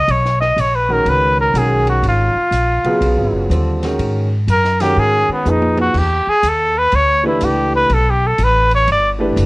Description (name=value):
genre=modal jazz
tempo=123 BPM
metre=4/4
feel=swing 66% on 8ths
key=G# dorian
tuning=A4 = 441 Hz
part: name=warm trumpet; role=melody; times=0.0-9.1 s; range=B3 to D#5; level=-15 LUFS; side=equal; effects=cassette tape, plate reverb
part: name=upright bass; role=bass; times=0.0-9.5 s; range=F#1 to G#2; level=-18 LUFS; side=equal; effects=none
part: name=compact cocktail drum kit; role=drums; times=0.1-9.5 s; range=crash cymbal, hi-hat, kick drum, ride cymbal, snare drum, toms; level=-30 LUFS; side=equal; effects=cassette tape
part: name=clear baby grand piano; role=accompaniment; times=0.9-9.5 s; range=A#2 to B4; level=-19 LUFS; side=equal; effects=cassette tape, plate reverb
room=light reverb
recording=home recording on cassette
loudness=-12 LUFS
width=side -23 dB against mid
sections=0.0-9.5 A section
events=trumpet solo 0.0-9.5; drum fill 5.5-6.0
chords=0.0 G#m11; 6.0 Em11